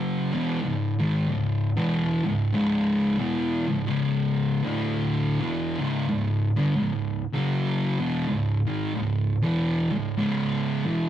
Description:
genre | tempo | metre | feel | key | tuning
metal | 63 BPM | 4/4 | swing 61% on 8ths | C# minor | A4 = 440 Hz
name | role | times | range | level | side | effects
thick fuzz guitar | solo | 0.0-11.1 s | C#2 to F#3 | -23 LUFS | equal | distortion
room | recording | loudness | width
moderate small room reverb, RT60 0.5 s | rough rehearsal-room recording, warm saturation | -23 LUFS | side -11 dB against mid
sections
0.0-11.1 A section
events
none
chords
0.0 C#m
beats
0.04 1.00 | 1.96 2.92 3.87 4.83 | 5.79 6.74 7.70 8.65 | 9.61 10.56

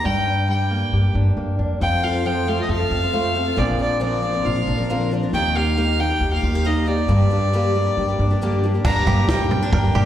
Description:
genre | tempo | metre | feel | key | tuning
indie folk with a building arrangement | 136 BPM | 4/4 | straight | unclear | A4 = 440 Hz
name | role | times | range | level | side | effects
bright fiddle | melody | 0.0-10.1 s | D5 to Bb5 | -24 LUFS | left 1 dB | slapback echo
fingerpicked steel-string acoustic guitar | accompaniment | 0.0-10.1 s | F2 to A4 | -26 LUFS | right 1 dB | slapback echo
upright bass | bass | 0.1-10.1 s | Bb1 to G2 | -21 LUFS | equal | none
picked twelve-string acoustic guitar | accompaniment | 1.8-10.1 s | G2 to Bb4 | -26 LUFS | left 3 dB | slapback echo
bluegrass banjo | arpeggios | 8.8-10.1 s | D4 to Bb4 | -26 LUFS | right 5 dB | slapback echo
compact cocktail drum kit | drums | 8.8-10.1 s | crash cymbal, kick drum, snare drum, toms | -21 LUFS | right 1 dB | none
room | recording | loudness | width
light reverb, studio reverb | live gig heard through the venue's PA, recital hall reverb | -17 LUFS | side -11 dB against mid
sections
0.0-8.8 A section; 8.8-10.1 B section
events
none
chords
0.1 Gm; 1.8 F; 3.6 Bbadd9; 5.3 Eb; 7.1 Gm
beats
| 0.05 0.49 0.93 1.37 | 1.81 2.25 2.69 3.13 | 3.57 4.01 4.45 4.89 | 5.33 5.77 6.21 6.65 | 7.09 7.53 7.97 8.41 | 8.85 9.29 9.73

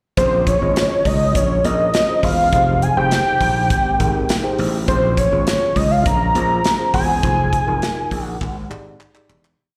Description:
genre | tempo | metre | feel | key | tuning
early-eighties boogie funk | 102 BPM | 4/4 | straight | Bb minor | A4 = 441 Hz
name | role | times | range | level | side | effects
fat analog lead | melody | 0.2-9.0 s | C5 to Bb5 | -20 LUFS | equal | chorus, plate reverb, slapback echo
mellow tine electric piano | accompaniment | 0.2-9.5 s | C4 to Eb5 | -28 LUFS | equal | plate reverb, slapback echo
gritty slap bass | bass | 0.2-9.5 s | E1 to Db2 | -23 LUFS | equal | overdrive
modern studio drum kit | drums | 0.2-9.6 s | handclaps, hi-hat, kick drum, snare drum | -24 LUFS | equal | none
room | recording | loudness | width
light reverb | live gig heard through the venue's PA, recital hall reverb | -17 LUFS | mono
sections
0.2-9.6 verse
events
fade-out 7.2-9.6; drum fill 8.4-9.6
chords
0.2 Bbm9; 2.5 Fm9; 4.9 Bbm9; 7.2 Fm9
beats
| 0.17 0.76 1.35 1.94 | 2.53 3.12 3.70 4.29 | 4.88 5.47 6.06 6.64 | 7.23 7.82 8.41 9.00

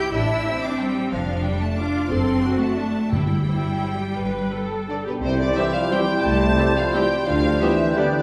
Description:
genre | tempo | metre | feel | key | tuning
classical, orchestral ballroom waltz | 163-196 BPM | 3/4 | rubato | C major | A4 = 440 Hz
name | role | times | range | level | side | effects
clear studio violin section | second line | 0.0-8.0 s | D4 to G6 | -37 LUFS | equal | none
rich studio viola section | accompaniment | 0.0-8.0 s | G3 to B4 | -31 LUFS | equal | none
bright studio cello section | bass | 0.0-7.6 s | C3 to G4 | -28 LUFS | equal | none
warm studio double bass section | bass | 0.1-7.6 s | F1 to D2 | -30 LUFS | equal | none
rich studio violin section | melody | 0.4-8.2 s | B4 to A5 | -31 LUFS | equal | none
timpani | percussion | 3.1-3.6 s | G2 | -29 LUFS | equal | none
dark French horn section | sustained chords | 4.9-8.2 s | B2 to A3 | -27 LUFS | equal | none
mellow clarinet | second line | 5.2-8.2 s | D4 to E4 | -32 LUFS | equal | none
mellow hollow small flute group | second line | 5.2-8.2 s | G6 | -33 LUFS | equal | none
warm oboe | second line | 5.2-8.2 s | B4 to C5 | -32 LUFS | equal | none
mellow bassoon | accompaniment | 5.2-8.2 s | G3 | -28 LUFS | equal | none
mellow tuba | bass | 5.2-7.6 s | C2 to D2 | -31 LUFS | equal | none
dark trombone section | sustained chords | 5.6-8.1 s | D3 to C4 | -33 LUFS | equal | none
clear trumpet section | stabs | 5.6-8.1 s | G4 | -32 LUFS | equal | none
room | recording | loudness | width
wet scoring stage reverb, RT60 1.8 s | none | -22 LUFS | mono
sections
0.0-5.2 A section; 5.2-8.2 B section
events
none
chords
0.1 Am; 1.1 Dm/F; 2.1 D7/F#; 3.1 C/G (rootless); 4.2 G; 5.2 C; 7.3 G7/D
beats
| 0.14 0.46 0.80 | 1.12 1.45 1.79 | 2.11 2.43 2.78 | 3.12 3.47 3.83 | 4.17 4.52 4.88 | 5.22 5.56 5.92 | 6.25 6.59 6.95 | 7.28 7.61 7.97

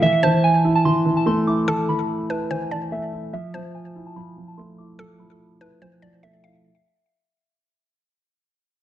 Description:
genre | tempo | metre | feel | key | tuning
hip hop | 145 BPM | 4/4 | half-time | unclear | A4 = 439 Hz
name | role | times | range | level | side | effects
soft synth bell | melody | 0.0-6.6 s | E5 to D6 | -23 LUFS | right 2 dB | chorus, phaser, low-pass filter, digital delay
dark concert grand piano | accompaniment | 0.0-6.7 s | E3 to E4 | -22 LUFS | right 1 dB | low-pass filter
mallet-like synth pluck | second line | 0.2-6.6 s | A4 to F5 | -28 LUFS | left 2 dB | chorus, digital delay
room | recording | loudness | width
light reverb | dense, heavily limited modern master | -18 LUFS | side -12 dB against mid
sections
0.0-6.6 A section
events
fade-out 0.0-6.6; filter sweep 0.0-6.6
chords
0.0 A5; 3.3 Fmaj7#11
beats
| 0.02 0.44 0.85 1.26 | 1.68 2.09 2.51 2.92 | 3.33 3.75 4.16 4.58 | 4.99 5.40 5.82 6.23

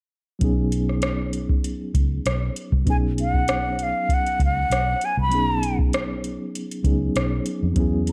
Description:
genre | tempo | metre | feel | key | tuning
lush 1970s-style soul | 98 BPM | 4/4 | swing 54% on 16ths | unclear | A4 = 439 Hz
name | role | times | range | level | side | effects
mellow reed electric piano | accompaniment | 0.4-8.1 s | F#3 to G#4 | -29 LUFS | equal | fast tremolo
vintage muted fingered electric bass | bass | 0.4-8.1 s | B1 to E#2 | -27 LUFS | equal | none
soft vintage rhythm box | drums | 0.4-8.1 s | hi-hat, kick drum, rim click | -26 LUFS | equal | overdrive
breathy concert flute | melody | 2.9-5.8 s | E#5 to B5 | -26 LUFS | equal | none
room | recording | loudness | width
little or no reverb | none | -23 LUFS | mono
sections
0.4-2.9 A section; 2.9-8.1 B section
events
none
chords
0.4 B69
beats
| 0.41 1.03 1.64 2.25 | 2.87 3.48 4.09 4.70 | 5.32 5.93 6.54 7.15 | 7.76

